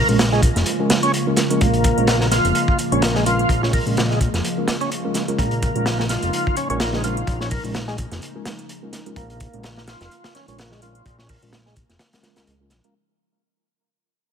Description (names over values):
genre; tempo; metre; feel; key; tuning
breakbeat, breaks; 127 BPM; 4/4; swing 56% on 16ths; Bb minor; A4 = 440 Hz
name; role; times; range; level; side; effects
warbly tape-like pad; sustained chords; 0.0-12.9 s; Db3 to F4; -26 LUFS; right 1 dB; chorus, built-in reverb, sidechain pumping
overdriven tonewheel organ; riff; 0.0-12.9 s; Ab3 to Bb4; -23 LUFS; equal; chorus vibrato, slow rotary speaker, low-pass filter, dub echo
fat analog bass; bass; 0.0-12.8 s; F1 to Db2; -23 LUFS; equal; none
mellow tine electric piano; stabs; 0.1-12.9 s; Ab3 to Bb4; -27 LUFS; right 2 dB; medium stereo tremolo, low-pass filter, dub echo
electronic hi-hat; drums; 0.1-12.9 s; none; -31 LUFS; right 3 dB; none
crunchy breakbeat drum kit; drums; 0.2-12.8 s; hi-hat, kick drum, snare drum; -22 LUFS; equal; none
room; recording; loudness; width
light reverb, studio ambience; none; -17 LUFS; side -7 dB against mid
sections
0.0-12.9 A section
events
fade-out 0.0-12.9; filter sweep on tonewheel organ 0.0-12.9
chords
0.0 Bbm7